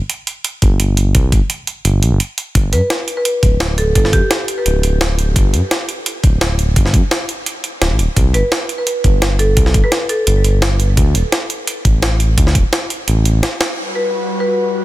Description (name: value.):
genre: liquid drum and bass.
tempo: 171 BPM.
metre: 4/4.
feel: swing 53% on 16ths.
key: G major.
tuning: A4 = 435 Hz.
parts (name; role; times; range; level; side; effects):
jungle sampler-style drum kit; drums; 0.1-13.7 s; hi-hat, snare drum; -19 LUFS; right 1 dB; low-pass filter on hats, studio reverb, low-pass filter on snare.
smooth synth bass; bass; 0.6-13.4 s; D1 to G2; -14 LUFS; equal; none.
electronic kick drum; drums; 0.6-12.6 s; none; -13 LUFS; equal; studio reverb.
marimba with medium hard mallets; melody; 2.7-4.8, 8.3-10.4, 14.0-14.6 s; G4 to B4; -20 LUFS; equal; ping-pong delay.
airy breathy pad; sustained chords; 13.8-14.8 s; G3 to B4; -19 LUFS; left 1 dB; chorus.
room: little or no reverb.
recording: dense, heavily limited modern master.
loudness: -13 LUFS.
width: side -16 dB against mid.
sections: 0.0-13.8 A section; 13.8-14.8 B section.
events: break 13.4-13.8; drum fill 13.6; band accent 13.6.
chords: 0.0 C5; 2.6 G5; 8.2 C5; 11.0 D5; 13.8 Gmaj7.